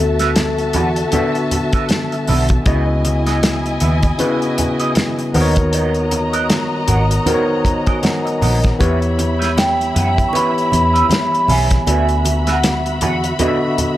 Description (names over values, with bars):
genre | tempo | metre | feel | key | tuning
lush 1970s-style soul | 78 BPM | 4/4 | swing 58% on 16ths | unclear | A4 = 440 Hz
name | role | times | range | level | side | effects
vibraphone with soft mallets | melody | 0.0-2.2, 9.6-13.2 s | A4 to C#6 | -20 LUFS | equal | analog delay
warm studio string section | second line | 0.0-14.0 s | E4 to B5 | -24 LUFS | equal | none
barky tine electric piano | accompaniment | 0.0-14.0 s | C#3 to A#5 | -20 LUFS | left 2 dB | none
vintage muted fingered electric bass | bass | 0.0-13.3 s | G#1 to F#2 | -18 LUFS | equal | none
electric guitar through a small old amp | riff | 0.2-13.8 s | B3 to F#5 | -25 LUFS | right 5 dB | wah, tube saturation, lush chorus
warm soul drum kit | drums | 0.2-14.0 s | hi-hat, kick drum, snare drum | -19 LUFS | equal | none
congas | percussion | 0.4-14.0 s | none | -25 LUFS | right 2 dB | none
room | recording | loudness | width
light reverb, small room ambience | none | -14 LUFS | side -14 dB against mid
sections
0.0-14.0 A section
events
tine electric piano fill 7.3-8.8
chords
0.0 D69; 2.7 C#m11; 5.3 Bmaj7; 8.8 Em6; 11.9 D69